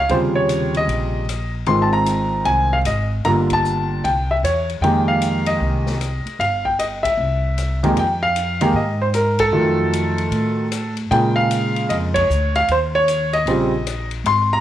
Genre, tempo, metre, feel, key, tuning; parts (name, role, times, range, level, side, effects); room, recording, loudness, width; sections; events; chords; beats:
jazz piano trio; 153 BPM; 4/4; swing 64% on 8ths; F minor; A4 = 440 Hz
warm concert grand piano; melody; 0.0-14.6 s; F2 to C6; -18 LUFS; equal
upright bass; bass; 0.0-14.6 s; G1 to Bb2; -22 LUFS; equal
swinging big-band drum kit; drums; 0.1-14.4 s; hi-hat, kick drum, ride cymbal, rim click, snare drum; -32 LUFS; left 6 dB
moderate spring reverb, RT60 1.2 s, studio ambience; 1960s-style stereo; -16 LUFS; side -12 dB against mid
0.0-8.0 A section; 8.0-14.6 A section
band accent 3.4, 7.0, 9.3, 12.1
0.1 Eb13; 1.7 Ab6; 3.3 Gm7; 4.0 C; 4.8 Fm11; 6.4 N.C.; 7.2 C; 8.0 Fm11; 9.5 F7b9; 11.1 Bbm7; 12.7 Eb7(no3)
| 0.10 0.50 0.89 1.28 | 1.68 2.07 2.46 2.86 | 3.25 3.65 4.04 4.43 | 4.83 5.22 5.61 6.00 | 6.40 6.79 7.18 7.58 | 7.97 8.36 8.76 9.15 | 9.54 9.94 10.33 10.72 | 11.11 11.51 11.90 12.29 | 12.69 13.08 13.47 13.86 | 14.26